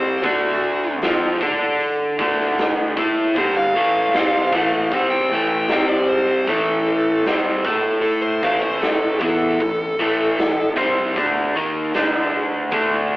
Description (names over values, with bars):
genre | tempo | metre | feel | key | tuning
blues rock power trio and southern rock | 77 BPM | 4/4 | straight | unclear | A4 = 440 Hz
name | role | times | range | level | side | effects
dark smooth lead guitar | melody | 0.0-10.7 s | F#4 to G5 | -22 LUFS | equal | overdrive
overdriven electric guitar | riff | 0.0-13.2 s | G2 to D5 | -19 LUFS | equal | none
fuzz fingered electric bass | bass | 0.0-13.2 s | G1 to D3 | -30 LUFS | equal | overdrive
huge arena drum kit | drums | 0.2-12.9 s | hi-hat, kick drum, snare drum | -25 LUFS | equal | none
room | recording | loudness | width
moderate small room ambience, RT60 0.5 s | rough rehearsal-room recording, telephone sound | -16 LUFS | side -19 dB against mid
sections
0.0-13.2 A section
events
none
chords
0.2 D; 3.4 A5; 5.7 C5; 6.5 A5; 11.9 D5